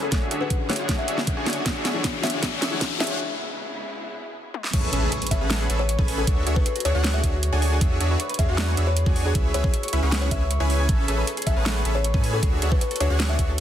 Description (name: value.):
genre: future bass.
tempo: 156 BPM.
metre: 4/4.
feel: half-time.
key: A major.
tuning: A4 = 442 Hz.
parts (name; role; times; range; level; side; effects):
buzzing kalimba; melody; 0.0-13.6 s; G#4 to E5; -32 LUFS; left 5 dB; sidechain pumping, tape echo.
felt-muted upright piano; accompaniment; 0.0-3.2 s; D3 to F#5; -34 LUFS; left 5 dB; sidechain pumping, tape echo.
dark studio string section; sustained chords; 0.0-4.7 s; C#3 to G#4; -38 LUFS; equal; none.
dense compressed supersaw; riff; 0.0-13.5 s; C#4 to G#5; -28 LUFS; right 1 dB; sidechain pumping, low-pass filter.
riser and impact; sound effects; 0.1-6.3 s; none; -33 LUFS; left 2 dB; none.
dubstep drum kit; drums; 0.1-13.6 s; crash cymbal, hi-hat, snare drum, toms; -28 LUFS; right 1 dB; none.
electronic kick drum; drums; 0.1-13.5 s; none; -23 LUFS; equal; none.
Celtic harp; arpeggios; 4.7-13.6 s; F#4 to B5; -33 LUFS; equal; sidechain pumping, tape echo.
saturated sub bass; bass; 4.7-13.6 s; A1 to A2; -24 LUFS; equal; sidechain pumping.
room: light reverb, small room ambience.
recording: dense, heavily limited modern master, high-pass filter.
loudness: -21 LUFS.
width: side -10 dB against mid.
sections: 0.0-4.7 A section; 4.7-13.6 B section.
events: build-up 0.0-4.7; drum fill 0.0-3.2, 4.5; filter sweep 0.0-4.7; riser 0.1-3.2; break 3.2-4.7; drop 4.7-13.6; impact 4.7-6.3.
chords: 0.1 Dmaj9#11; 3.2 C#m7; 4.7 Amaj9; 6.3 Dmaj9#11; 7.8 E13; 9.3 C#m7; 10.9 Amaj9; 12.4 Dmaj9#11.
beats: | 0.12 0.50 0.89 1.27 | 1.66 2.04 2.43 2.81 | 3.20 3.58 3.97 4.35 | 4.74 5.12 5.50 5.89 | 6.27 6.66 7.04 7.43 | 7.81 8.20 8.58 8.97 | 9.35 9.73 10.12 10.50 | 10.89 11.27 11.66 12.04 | 12.43 12.81 13.20 13.58.